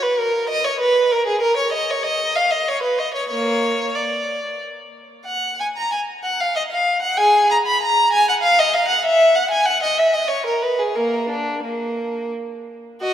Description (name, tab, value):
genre	classical, baroque-style suite movement for unaccompanied violin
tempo	86-99 BPM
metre	3/4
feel	rubato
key	unclear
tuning	A4 = 439 Hz
part	rich violin	solo	0.0-13.1 s	Bb3 to Cb6	-17 LUFS	equal	none
room	wet church reverb, RT60 3.4 s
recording	none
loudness	-16 LUFS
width	side -10 dB against mid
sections	0.0-13.0 A section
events	none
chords	none